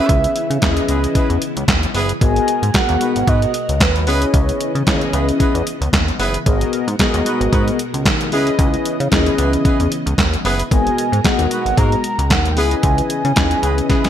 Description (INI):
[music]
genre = early-eighties boogie funk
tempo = 113 BPM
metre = 4/4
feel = swing 56% on 16ths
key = unclear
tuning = A4 = 440 Hz
[part]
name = mellow horn-like synth lead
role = melody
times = 0.0-5.1, 10.7-14.1 s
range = B4 to A#5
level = -22 LUFS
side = right 2 dB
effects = chorus, ping-pong delay
[part]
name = warm horn section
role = second line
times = 0.0-14.0 s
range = A#3 to B4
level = -25 LUFS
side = right 2 dB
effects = none
[part]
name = mellow synth brass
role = accompaniment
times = 0.0-14.1 s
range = B3 to F#5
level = -20 LUFS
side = left 3 dB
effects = chorus
[part]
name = string machine, full ensemble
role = sustained chords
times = 0.0-14.1 s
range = B2 to D#5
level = -27 LUFS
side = equal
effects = ensemble chorus
[part]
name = chorused synth bass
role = bass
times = 0.1-14.1 s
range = F#1 to C#3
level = -19 LUFS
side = equal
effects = none
[part]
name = detuned 8-bit digital drum machine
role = drums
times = 0.1-14.1 s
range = handclaps, hi-hat, kick drum, snare drum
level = -18 LUFS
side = equal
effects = gated reverb
[sound]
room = light reverb, digital ambience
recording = bright 1980s-style digital production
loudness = -14 LUFS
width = side -10 dB against mid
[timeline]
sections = 0.0-14.1 A section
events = drum fill 13.9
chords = 0.0 C#m9; 2.2 G#m9; 4.1 C#m9; 6.5 G#m9; 8.3 C#m9; 10.7 G#m9; 12.6 C#m9